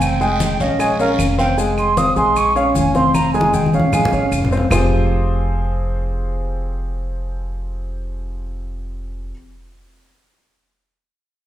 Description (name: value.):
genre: Afro-Cuban jazz.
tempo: 153 BPM.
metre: 4/4.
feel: straight.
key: F minor.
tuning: A4 = 440 Hz.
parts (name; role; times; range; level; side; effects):
reedy concert flute; second line; 0.0-4.6 s; Bb4 to Eb6; -19 LUFS; right 3 dB; none.
warm concert grand piano; accompaniment; 0.0-9.3 s; F3 to Ab5; -20 LUFS; left 1 dB; none.
upright bass; bass; 0.0-9.3 s; F1 to Bb1; -22 LUFS; equal; none.
claves; percussion; 0.0-4.8 s; none; -30 LUFS; equal; none.
congas; percussion; 0.0-4.8 s; none; -22 LUFS; left 2 dB; none.
guiro; percussion; 0.0-1.6 s; none; -32 LUFS; right 3 dB; none.
maracas; percussion; 0.0-4.8 s; none; -34 LUFS; left 5 dB; none.
room: wet recital hall reverb, RT60 1.4 s.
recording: recorded in a church or concert hall.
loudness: -15 LUFS.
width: side -12 dB against mid.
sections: 0.0-4.7 A section; 4.7-7.8 B section.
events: flute solo 0.0-4.7; drum fill 3.1-4.7.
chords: 0.0 Fmadd9; 0.8 Bbm7; 1.6 Fm; 3.9 Bbm7; 4.7 Fmadd9.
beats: | 0.01 0.40 0.79 1.19 | 1.58 1.97 2.36 2.75 | 3.14 3.53 3.93 4.32 | 4.71 5.10 5.49 5.89 | 6.28 6.67 7.06 7.45.